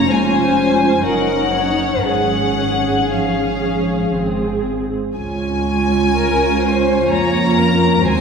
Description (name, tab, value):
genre	classical, slow romantic movement for string orchestra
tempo	57-64 BPM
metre	3/4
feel	rubato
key	Db major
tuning	A4 = 440 Hz
part	warm studio violin section	melody	0.0-8.2 s	F5 to Bb5	-20 LUFS	left 4 dB	none
part	rich symphonic violin section	second line	0.0-8.2 s	Ab4 to Db5	-22 LUFS	left 1 dB	none
part	dark symphonic viola section	accompaniment	0.0-8.2 s	C4 to Ab4	-19 LUFS	right 2 dB	none
part	dark symphonic double bass section	bass	0.0-8.2 s	F1 to F2	-22 LUFS	right 1 dB	none
part	warm studio cello section	bass	0.0-8.2 s	F3 to Bb3	-22 LUFS	right 3 dB	none
room	wet concert hall reverb, RT60 2.3 s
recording	heard from further back in the room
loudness	-14 LUFS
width	side -6 dB against mid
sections	0.0-8.2 A section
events	none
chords	0.0 Db/F; 1.1 Ebm7/Gb; 2.1 Db/Ab; 4.1 Ab; 5.2 Db